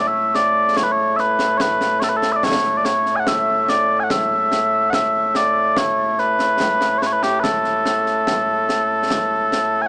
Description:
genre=scottish traditional, Scottish pipe music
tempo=72 BPM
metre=3/4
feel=straight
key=A major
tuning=A4 = 440 Hz
part: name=mellow small bagpipes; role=melody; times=0.0-9.9 s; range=A2 to G#5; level=-19 LUFS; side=equal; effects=none
part: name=concert snare drum and concert bass drum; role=drums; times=0.3-9.7 s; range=none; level=-28 LUFS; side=equal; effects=none
room=light reverb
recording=small speaker sound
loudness=-18 LUFS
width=mono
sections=0.0-9.9 A section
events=none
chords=none

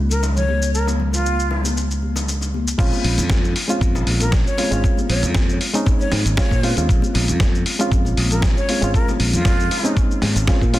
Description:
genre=nu-disco, nu disco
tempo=117 BPM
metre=4/4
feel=straight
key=Bb minor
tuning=A4 = 440 Hz
part: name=reed electric piano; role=accompaniment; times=0.0-10.8 s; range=Ab3 to F4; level=-24 LUFS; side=right 1 dB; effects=overdrive, sidechain pumping, dub echo
part: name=modern bright fingered electric bass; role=bass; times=0.0-10.8 s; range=Ab1 to Bb2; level=-20 LUFS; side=equal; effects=none
part: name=breathy jazz flute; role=melody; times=0.1-10.1 s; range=F4 to Db5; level=-26 LUFS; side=equal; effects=dub echo
part: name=dusty soul sampler-style drum kit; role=drums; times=0.1-10.8 s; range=crash cymbal, hi-hat, shaker, snare drum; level=-25 LUFS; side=left 1 dB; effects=studio reverb
part: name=bongos and congas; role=percussion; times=0.2-10.8 s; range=none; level=-29 LUFS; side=left 6 dB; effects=none
part: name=electronic kick drum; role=drums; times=2.8-10.7 s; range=none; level=-18 LUFS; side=equal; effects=studio reverb
room=little or no reverb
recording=dense, heavily limited modern master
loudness=-16 LUFS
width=side -15 dB against mid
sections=0.0-2.8 A section; 2.8-10.8 B section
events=drop 2.8-10.8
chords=0.0 Db6; 2.8 Bbm7

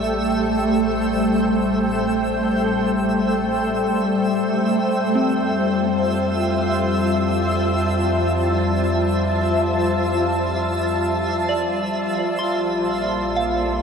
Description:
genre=ambient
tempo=free time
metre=none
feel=none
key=unclear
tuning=A4 = 439 Hz
part: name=granular cloud pad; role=sustained chords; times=0.0-13.8 s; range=A3 to A5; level=-20 LUFS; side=right 1 dB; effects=built-in reverb
part: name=round analog bass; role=bass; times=0.0-13.8 s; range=A1 to F2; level=-28 LUFS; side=right 1 dB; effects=none
part: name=organ-like drone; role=drone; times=0.0-13.8 s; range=G3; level=-25 LUFS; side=left 4 dB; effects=ensemble chorus, built-in reverb
part: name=twinkling granular texture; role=texture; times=0.0-13.8 s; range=E5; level=-29 LUFS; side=right 1 dB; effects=built-in reverb
part: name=soft synth bell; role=arpeggios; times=5.2-13.8 s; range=C4 to C6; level=-28 LUFS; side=right 1 dB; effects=chorus, phaser, diffuse ambient delay
room=wet cathedral reverb, RT60 5.5 s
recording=in a vast, echoing space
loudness=-18 LUFS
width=side -6 dB against mid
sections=0.0-13.8 A section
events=fade-in on analog synth bass 0.0-13.8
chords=0.0 Am7; 4.6 Fmaj7; 12.1 Bbmaj7

